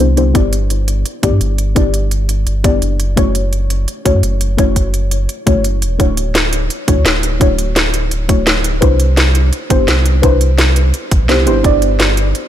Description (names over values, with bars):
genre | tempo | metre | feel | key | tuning
liquid drum and bass | 170 BPM | 4/4 | straight | unclear | A4 = 440 Hz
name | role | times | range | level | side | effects
deep mellow chord stab | accompaniment | 0.0-12.5 s | A3 to D5 | -17 LUFS | left 2 dB | chorus, ping-pong delay
warm sub bass | bass | 0.0-12.3 s | D1 to G2 | -14 LUFS | equal | none
garage drum kit | drums | 0.0-12.4 s | hi-hat, snare drum | -17 LUFS | equal | none
electronic kick drum | drums | 0.3-11.7 s | none | -15 LUFS | equal | none
room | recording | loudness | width
little or no reverb | none | -11 LUFS | side -11 dB against mid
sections
0.0-12.5 A section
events
filter sweep on synth stab 0.0-12.5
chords
0.3 G6; 3.0 F#m7; 6.0 Dmaj9; 8.8 Cmaj9; 11.6 G6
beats
0.00 | 0.35 0.70 1.06 1.41 | 1.76 2.12 2.47 2.82 | 3.17 3.53 3.88 4.23 | 4.59 4.94 5.29 5.64 | 6.00 6.35 6.70 7.06 | 7.41 7.76 8.12 8.47 | 8.82 9.17 9.53 9.88 | 10.23 10.59 10.94 11.29 | 11.64 12.00 12.35